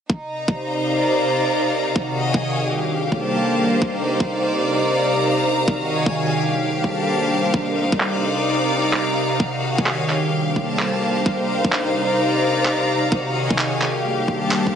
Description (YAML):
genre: UK garage, two-step garage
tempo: 129 BPM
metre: 4/4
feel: swing 66% on 16ths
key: C dorian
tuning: A4 = 437 Hz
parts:
  - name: ethereal airy pad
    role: sustained chords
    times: 0.4-14.8 s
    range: C3 to F5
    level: -22 LUFS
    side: equal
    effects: ensemble chorus, built-in reverb, sidechain pumping
  - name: electronic kick drum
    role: drums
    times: 0.1-14.7 s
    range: none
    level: -20 LUFS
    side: equal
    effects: overdrive, high-pass filter on kick
  - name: bright studio string section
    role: texture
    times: 0.1-14.8 s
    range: Bb3 to Bb5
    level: -21 LUFS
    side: equal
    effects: sidechain pumping
  - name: electronic handclaps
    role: drums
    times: 8.0-14.6 s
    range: none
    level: -24 LUFS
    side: right 1 dB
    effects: overdrive, low-pass filter on snare
room: wet lush hall reverb, RT60 1.8 s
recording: dreamy mix soaked in reverb, nothing above 10.6 kHz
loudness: -18 LUFS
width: side -8 dB against mid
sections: 0.1-14.8 A section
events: filter sweep on ambient pad 0.1-14.8; drum fill 14.5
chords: 0.1 Cm11; 2.0 Ebm11; 2.7 Gm11; 3.8 Cm11; 5.7 Ebm11; 6.4 Gm11; 7.5 Cm11; 9.4 Ebm11; 10.1 Gm11; 11.3 Cm11; 13.1 Ebm11; 13.8 Gm11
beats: | 0.10 0.56 1.03 1.49 | 1.96 2.42 2.89 3.35 | 3.82 4.28 4.75 5.21 | 5.68 6.14 6.61 7.07 | 7.54 8.00 8.47 8.93 | 9.40 9.86 10.33 10.79 | 11.26 11.72 12.19 12.65 | 13.12 13.59 14.05 14.52